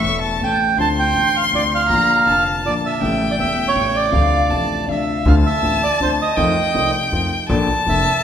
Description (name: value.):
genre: tango.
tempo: 161 BPM.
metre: 3/4.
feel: rubato.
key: D minor.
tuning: A4 = 440 Hz.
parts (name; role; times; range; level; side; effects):
bandoneon; melody; 0.0-8.2 s; C5 to A5; -19 LUFS; right 4 dB; none.
rich violin; second line; 0.0-8.2 s; F5 to C#6; -21 LUFS; left 3 dB; none.
warm concert grand piano; accompaniment; 0.0-8.0 s; E1 to A4; -21 LUFS; left 3 dB; none.
upright bass; bass; 0.0-8.0 s; E1 to F2; -23 LUFS; equal; none.
room: wet recital hall reverb, RT60 1.6 s.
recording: recorded in a church or concert hall.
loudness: -15 LUFS.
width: side -9 dB against mid.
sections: 0.0-5.3 A section; 5.3-8.2 B section.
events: none.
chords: 0.0 A; 0.8 Dm7; 1.9 Bb; 3.0 A7; 4.1 Dm7; 6.4 F7; 7.5 Bbmaj7.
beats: 0.04 0.41 | 0.79 1.16 1.53 | 1.91 2.28 2.65 | 3.02 3.40 3.77 | 4.14 4.51 4.89 | 5.26 5.63 6.01 | 6.38 6.75 7.12 | 7.50 7.87.